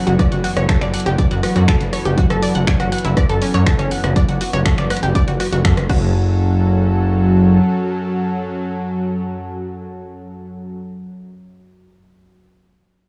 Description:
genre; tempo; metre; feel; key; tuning
melodic techno; 121 BPM; 4/4; straight; F# minor; A4 = 437 Hz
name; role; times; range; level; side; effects
lush unison pad; sustained chords; 0.0-10.8 s; E3 to A4; -28 LUFS; equal; chorus, sidechain pumping
unison pluck; arpeggios; 0.0-6.4 s; C#4 to F#6; -25 LUFS; equal; cassette tape, sidechain pumping, analog delay
bowed-like drone; drone; 0.0-10.8 s; F#2 to F#3; -25 LUFS; equal; built-in reverb, sidechain pumping
gritty driven synth bass; bass; 0.1-7.6 s; F#1 to F#2; -20 LUFS; equal; sidechain pumping
punchy analog drum machine; drums; 0.1-6.0 s; crash cymbal, finger snaps, hi-hat, rim click; -28 LUFS; equal; none
electronic kick drum; drums; 0.2-6.0 s; none; -20 LUFS; equal; none
room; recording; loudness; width
light reverb; dry, gritty hardware recording, cassette tape; -17 LUFS; mono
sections
0.0-6.1 A section; 6.1-10.1 B section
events
drop 0.0-6.1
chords
0.0 E7(no3)/F#; 5.9 F#m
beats
| 0.19 0.69 1.19 1.68 | 2.18 2.67 3.17 3.66 | 4.16 4.66 5.15 5.65 | 6.14 6.64 7.14 7.63 | 8.13 8.62 9.12 9.62

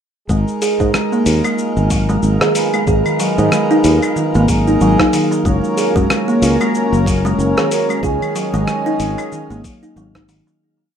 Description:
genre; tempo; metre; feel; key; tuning
organic downtempo; 93 BPM; 4/4; swing 57% on 16ths; G# dorian; A4 = 441 Hz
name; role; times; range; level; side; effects
hand-pumped harmonium; accompaniment; 0.3-9.6 s; D#3 to A#4; -21 LUFS; right 3 dB; sidechain pumping, digital delay, plate reverb
kalimba; arpeggios; 0.3-10.6 s; D#3 to G#4; -17 LUFS; equal; low-pass filter, digital delay
sustaining fretless electric bass; bass; 0.3-10.4 s; F#1 to G#2; -16 LUFS; equal; none
dusty soul sampler-style drum kit; drums; 0.3-10.6 s; cabasa, claves, hi-hat, rim click; -22 LUFS; left 2 dB; none
electronic kick drum; drums; 0.3-10.3 s; none; -21 LUFS; left 1 dB; none
wind-like tuned noise texture; texture; 1.1-10.6 s; E#4 to E#5; -30 LUFS; left 1 dB; built-in reverb
darbuka; percussion; 0.6-10.6 s; none; -28 LUFS; right 3 dB; none
warm analog pad; sustained chords; 5.5-10.6 s; C#4 to A#5; -24 LUFS; left 2 dB; wide subtle chorus, sidechain pumping
room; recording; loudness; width
moderate studio reverb, RT60 0.5 s; rough home demo mix; -13 LUFS; side -8 dB against mid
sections
0.3-10.6 groove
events
fade-out 7.2-10.6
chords
0.3 G#madd9; 5.5 F#; 8.0 C#sus2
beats
| 0.29 0.94 1.58 2.23 | 2.87 3.52 4.16 4.81 | 5.45 6.10 6.74 7.39 | 8.03 8.68 9.32 9.97

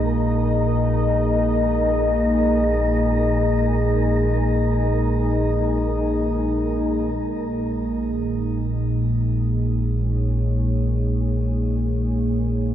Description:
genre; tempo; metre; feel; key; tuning
dark ambient drone; free time; none; none; unclear; A4 = 438 Hz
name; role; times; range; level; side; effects
dark analog pad; sustained chords; 0.0-12.7 s; Bb3 to Eb5; -22 LUFS; left 1 dB; chorus, shimmer reverb
deep rumbling drone; drone; 0.0-12.7 s; Bb1 to Bb2; -22 LUFS; equal; built-in reverb
wind-like tuned noise texture; texture; 0.0-7.2 s; Bb4; -31 LUFS; right 2 dB; built-in reverb, shimmer reverb
room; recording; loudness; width
wet cathedral reverb, RT60 6.2 s; none; -19 LUFS; side -10 dB against mid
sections
0.0-7.1 A section; 7.1-12.7 B section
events
none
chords
0.0 N.C.; 7.1 Bbm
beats
free time

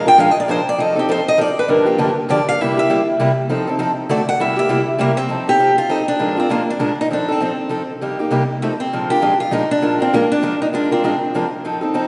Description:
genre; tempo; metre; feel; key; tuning
jazz; 199 BPM; 3/4; swing 59% on 8ths; F mixolydian; A4 = 440 Hz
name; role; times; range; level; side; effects
picked steel-string acoustic guitar; melody; 0.0-11.5 s; A3 to G5; -19 LUFS; equal; none
picked steel-string acoustic guitar; accompaniment; 0.0-12.1 s; G2 to Bb4; -21 LUFS; equal; none
room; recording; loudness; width
wet church reverb, RT60 2.8 s; recorded in a church or concert hall, nothing above 11.0 kHz; -17 LUFS; mono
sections
0.0-5.3 A section; 5.3-12.1 B section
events
steel-string acoustic guitar solo 0.0-5.3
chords
0.0 Bb7; 0.8 F7; 1.7 Gm7; 2.6 C7; 3.5 F7; 4.1 D7; 4.4 C7; 5.3 F7; 6.2 Bb7; 7.1 F7; 8.0 Cm7; 8.6 F7; 8.9 Bb7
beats
0.19 0.49 | 0.79 1.09 1.39 | 1.69 1.99 2.29 | 2.59 2.89 3.19 | 3.50 3.80 4.10 | 4.40 4.70 5.00 | 5.30 5.60 5.90 | 6.20 6.51 6.81 | 7.11 7.41 7.71 | 8.02 8.32 8.62 | 8.92 9.22 9.53 | 9.83 10.13 10.43 | 10.73 11.04 11.34 | 11.64 11.94

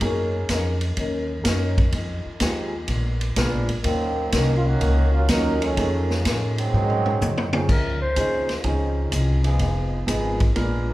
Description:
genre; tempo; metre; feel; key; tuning
jazz, big band swing; 125 BPM; 4/4; swing 68% on 8ths; Db major from 7.7 s; A4 = 440 Hz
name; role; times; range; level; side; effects
fingerpicked old ladder-braced acoustic guitar; accompaniment; 0.0-10.9 s; F2 to Bb4; -30 LUFS; left 2 dB; none
warm grand piano; accompaniment; 0.0-10.9 s; Gb3 to Bb4; -29 LUFS; right 1 dB; none
upright bass; bass; 0.0-10.9 s; F1 to A2; -23 LUFS; equal; none
vintage drum kit; drums; 0.0-10.7 s; crash cymbal, hi-hat, kick drum, ride cymbal, snare drum, toms; -26 LUFS; equal; none
clear trombone section; second line; 3.8-7.5 s; Eb3 to Gb4; -26 LUFS; right 3 dB; none
breathy clarinet; melody; 7.7-8.6 s; Bb4 to C5; -26 LUFS; equal; none
warm trombone section; sustained chords; 9.4-10.9 s; F3 to Bb4; -32 LUFS; equal; none
room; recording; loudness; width
wet recital hall reverb, RT60 1.5 s; recorded in a church or concert hall; -20 LUFS; side -16 dB against mid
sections
0.0-7.7 A section; 7.7-10.9 B section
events
trombone section solo 0.0-7.7; drum fill 6.7-7.7; clarinet solo 7.7-10.9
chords
0.0 Gb6; 1.9 Fm7; 2.9 Bb7b9; 3.8 Ebm7; 5.8 F7alt; 6.7 Ab7; 7.7 Dbmaj9; 9.6 Fm7b5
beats
| 0.01 0.49 0.97 1.45 | 1.93 2.41 2.89 3.37 | 3.85 4.33 4.81 5.29 | 5.77 6.25 6.72 7.20 | 7.68 8.16 8.64 9.12 | 9.60 10.08 10.56

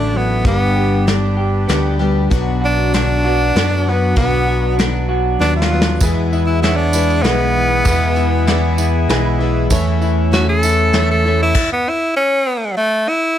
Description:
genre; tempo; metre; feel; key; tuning
folk rock and heartland rock; 97 BPM; 3/4; straight; unclear; A4 = 438 Hz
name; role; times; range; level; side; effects
bright tenor saxophone; melody; 0.0-13.4 s; A3 to A4; -17 LUFS; equal; none
picked plugged-in twelve-string acoustic guitar; accompaniment; 0.0-11.6 s; E2 to G4; -23 LUFS; left 4 dB; none
accordion; sustained chords; 0.0-11.5 s; F#3 to A4; -28 LUFS; equal; stereo widening
electric guitar through a small old amp; riff; 0.0-11.6 s; E2 to G4; -21 LUFS; equal; none
picked electric bass; bass; 0.0-11.5 s; G1 to F#2; -17 LUFS; equal; none
soft brush drum kit; drums; 0.4-11.7 s; crash cymbal, hi-hat, kick drum, snare drum; -19 LUFS; equal; none
bright grand piano; accompaniment; 6.0-11.4 s; E4 to B5; -27 LUFS; right 4 dB; none
tambourine; percussion; 6.0-10.9 s; none; -28 LUFS; right 7 dB; none
room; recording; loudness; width
light reverb; none; -13 LUFS; side -10 dB against mid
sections
0.0-13.4 A section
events
tenor saxophone solo 0.0-13.4; drum fill 5.4-6.0; grand piano fill 8.8-9.7; stop 11.6-13.4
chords
0.5 G; 2.3 Bm; 6.0 E; 9.7 A/E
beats
| 0.46 1.07 1.69 | 2.31 2.93 3.54 | 4.16 4.78 5.39 | 6.01 6.63 7.24 | 7.86 8.48 9.10 | 9.71 10.33 10.95 | 11.56 12.18 12.79

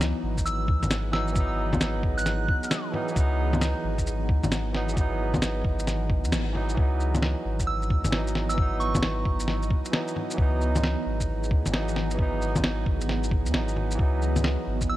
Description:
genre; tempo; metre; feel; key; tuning
future garage; 133 BPM; 4/4; swing 64% on 16ths; C# minor; A4 = 439 Hz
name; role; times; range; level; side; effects
barky tine electric piano; accompaniment; 0.0-15.0 s; E3 to D#4; -31 LUFS; right 2 dB; overdrive, sidechain pumping, analog delay
ethereal airy pad; sustained chords; 0.0-15.0 s; E3 to F#5; -35 LUFS; equal; ensemble chorus, built-in reverb, phaser, sidechain pumping
warm sub bass; bass; 0.0-15.0 s; G#1 to E2; -28 LUFS; equal; sidechain pumping
electronic snare drum, shaker and bongos; drums; 0.0-14.9 s; none; -28 LUFS; left 1 dB; none
electronic kick drum; drums; 0.4-14.9 s; none; -26 LUFS; equal; none
soft synth bell; melody; 0.5-2.8, 7.7-9.2, 14.9-15.0 s; C#6 to F#6; -32 LUFS; right 1 dB; chorus, vintage 12-bit sampler grit, tape echo
room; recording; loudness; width
light reverb; none; -23 LUFS; side -15 dB against mid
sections
0.0-6.8 A section; 6.8-15.0 A section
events
band accent 6.3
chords
0.0 C#m11 (rootless); 6.8 C#m11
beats
0.01 0.46 0.91 | 1.36 1.81 2.26 2.71 | 3.17 3.62 4.07 4.52 | 4.97 5.42 5.87 6.32 | 6.78 7.23 7.68 8.13 | 8.58 9.03 9.48 9.93 | 10.38 10.84 11.29 11.74 | 12.19 12.64 13.09 13.54 | 13.99 14.44 14.89

